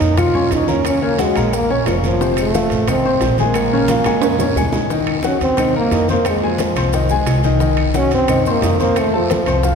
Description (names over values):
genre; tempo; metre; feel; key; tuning
latin, salsa; 178 BPM; 4/4; straight; unclear; A4 = 440 Hz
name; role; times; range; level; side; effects
breathy trombone; melody; 0.0-9.8 s; F3 to F4; -18 LUFS; right 1 dB; none
bright grand piano; accompaniment; 0.0-9.8 s; C3 to Eb6; -19 LUFS; left 3 dB; none
upright bass; bass; 0.0-9.8 s; F1 to Gb2; -21 LUFS; equal; none
bongos; percussion; 0.0-9.8 s; none; -28 LUFS; left 5 dB; none
congas; percussion; 0.0-9.8 s; none; -26 LUFS; equal; none
guiro; percussion; 0.0-9.8 s; none; -33 LUFS; right 5 dB; none
maracas; percussion; 0.0-9.8 s; none; -36 LUFS; right 7 dB; none
timbales; percussion; 0.0-9.6 s; none; -26 LUFS; right 5 dB; none
claves; percussion; 0.2-9.6 s; none; -34 LUFS; left 2 dB; none
room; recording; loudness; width
wet church reverb, RT60 2.8 s; recorded in a church or concert hall; -14 LUFS; side -6 dB against mid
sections
0.0-4.9 A section; 4.9-9.8 B section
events
drum fill 3.9-4.9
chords
0.0 Bbm; 0.9 Ebm7; 2.2 F7; 3.6 Bbm7; 4.9 Ebmadd9; 6.3 Fm7; 7.6 Cdim; 9.0 F